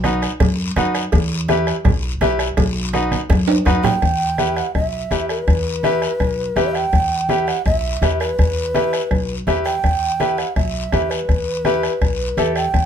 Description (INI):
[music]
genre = latin, cumbia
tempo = 165 BPM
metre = 4/4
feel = straight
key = E minor from 4.0 s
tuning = A4 = 436 Hz
[part]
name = bright upright piano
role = accompaniment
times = 0.0-12.6 s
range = D#4 to B4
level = -20 LUFS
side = left 2 dB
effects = none
[part]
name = upright bass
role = bass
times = 0.0-12.9 s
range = B1 to F#2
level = -22 LUFS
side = equal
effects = none
[part]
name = bombo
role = percussion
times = 0.0-12.9 s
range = none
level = -22 LUFS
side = left 1 dB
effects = none
[part]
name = congas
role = percussion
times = 0.0-12.9 s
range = none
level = -26 LUFS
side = right 4 dB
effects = none
[part]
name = cowbell and timbales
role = percussion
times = 0.0-3.9 s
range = none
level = -23 LUFS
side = right 4 dB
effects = none
[part]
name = guiro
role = percussion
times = 0.0-12.9 s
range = none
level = -31 LUFS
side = left 5 dB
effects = none
[part]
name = breathy round clay ocarina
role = melody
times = 3.8-12.9 s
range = B4 to G5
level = -21 LUFS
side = right 2 dB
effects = none
[sound]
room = moderate small room reverb, RT60 0.5 s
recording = minimal, uncompressed stereo recording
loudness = -16 LUFS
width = side -8 dB against mid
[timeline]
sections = 0.0-4.0 A section; 4.0-12.9 B section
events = drum fill 3.1-4.0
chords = 0.0 B; 1.1 Em; 2.6 B; 4.0 Em